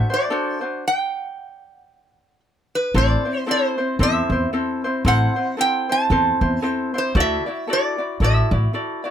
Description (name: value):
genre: Hawaiian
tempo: 114 BPM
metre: 4/4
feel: swing 59% on 8ths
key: unclear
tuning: A4 = 440 Hz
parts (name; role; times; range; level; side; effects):
- metal-body resonator slide guitar; melody; 0.0-9.0 s; B4 to A5; -22 LUFS; right 2 dB; none
- ukulele; accompaniment; 0.0-9.1 s; C4 to D5; -23 LUFS; left 2 dB; none
- upright bass; bass; 2.9-8.7 s; A1 to E2; -20 LUFS; equal; none
room: light reverb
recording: close, detailed microphones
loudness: -18 LUFS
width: side -9 dB against mid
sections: 0.0-2.9 A section; 2.9-9.1 B section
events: stop 0.8-2.9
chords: 0.0 D7; 0.8 N.C.; 2.9 Am; 7.2 Dadd9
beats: 0.32 | 0.85 1.37 1.90 2.42 | 2.95 3.47 4.00 4.53 | 5.05 5.58 6.10 6.63 | 7.15 7.68 8.20 8.73